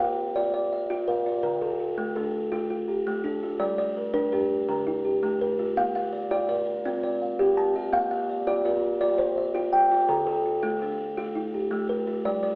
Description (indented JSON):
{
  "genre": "southern african traditional, mbira-style interlocking cycle",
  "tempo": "111 BPM (dotted quarters)",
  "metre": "12/8",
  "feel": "straight",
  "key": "unclear",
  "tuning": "A4 = 440 Hz",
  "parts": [
    { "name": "buzzing kalimba", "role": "arpeggios", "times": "0.0-12.6 s", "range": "D3 to F5+29c", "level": "-29 LUFS", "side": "equal", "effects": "none" },
    { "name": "kalimba", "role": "arpeggios", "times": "0.0-12.6 s", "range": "D3 to A5-29c", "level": "-25 LUFS", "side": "equal", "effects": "none" }
  ],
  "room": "wet large studio reverb, RT60 1.2 s",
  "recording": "band playing live in one room, telephone sound",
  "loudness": "-23 LUFS",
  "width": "side -29 dB against mid",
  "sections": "0.0-3.6 A section; 3.6-12.6 B section",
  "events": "none",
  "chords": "0.0 Bb; 1.4 Dm; 3.6 Gm; 4.7 Dm; 5.8 Bb; 6.9 C; 7.9 Bb; 10.1 Dm"
}